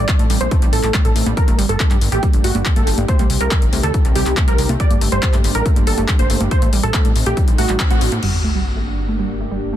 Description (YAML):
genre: uplifting trance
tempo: 140 BPM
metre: 4/4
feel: straight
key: G minor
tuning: A4 = 440 Hz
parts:
  - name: supersaw stab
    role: melody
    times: 0.0-8.1 s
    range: F#4 to D5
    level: -23 LUFS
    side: right 1 dB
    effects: sidechain pumping, low-pass filter, dub echo
  - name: lush unison pad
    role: sustained chords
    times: 0.0-9.8 s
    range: C3 to G4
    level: -27 LUFS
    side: equal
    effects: chorus, sidechain pumping
  - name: plucky analog bass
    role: bass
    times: 0.0-9.8 s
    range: G1 to A2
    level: -21 LUFS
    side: equal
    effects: sidechain pumping
  - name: electronic kick drum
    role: drums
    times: 0.1-7.9 s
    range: none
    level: -16 LUFS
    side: equal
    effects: none
  - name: punchy analog drum machine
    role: drums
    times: 0.1-8.3 s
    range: congas, crash cymbal, handclaps, hi-hat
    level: -24 LUFS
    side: left 2 dB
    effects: overdrive, sidechain pumping on hats, sidechain pumping on cymbals, sidechain pumping on perc
  - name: analog pluck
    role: arpeggios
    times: 0.2-9.8 s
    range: D3 to G4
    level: -26 LUFS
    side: right 4 dB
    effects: chorus, sidechain pumping, dub echo
  - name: sub drop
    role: sound effects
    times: 8.2-9.8 s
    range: none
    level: -22 LUFS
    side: equal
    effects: none
room: little or no reverb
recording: dense, heavily limited modern master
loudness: -14 LUFS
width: side -12 dB against mid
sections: 0.0-8.2 A section; 8.2-9.8 B section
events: filter sweep on analog synth pad 0.0-8.2; band accent 7.8; impact 8.2-9.8; filter sweep on synth pluck 8.2-9.8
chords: 0.0 Adim; 1.4 Gm; 3.1 Cm; 4.8 Gm; 6.5 Adim; 8.2 Gm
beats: 0.09 0.51 0.94 | 1.37 1.80 2.23 2.66 | 3.08 3.51 3.94 4.37 | 4.80 5.23 5.66 6.08 | 6.51 6.94 7.37 7.80 | 8.23 8.66 9.09 9.51